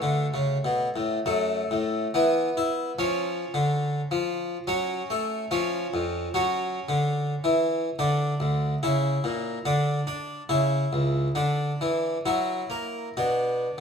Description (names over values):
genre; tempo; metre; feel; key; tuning
classical, baroque-style suite movement for harpsichord; 62-74 BPM (dotted quarters); 6/8; rubato; F# minor, B minor from 8.0 s; A4 = 438 Hz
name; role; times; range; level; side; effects
harpsichord; solo; 0.0-13.8 s; C#2 to F#4; -24 LUFS; equal; none
room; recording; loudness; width
wet stone room reverb, RT60 1.3 s; none; -24 LUFS; side -6 dB against mid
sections
0.0-1.3 A section; 1.3-13.8 B section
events
none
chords
0.0 F#m; 2.1 E5; 3.0 C#; 4.7 F#m; 5.5 C#/E#; 6.3 F#5; 8.0 N.C.; 8.8 A#dim/C#; 9.6 N.C.; 10.5 C#m; 11.4 Dsus2; 12.2 F#7; 13.2 Bm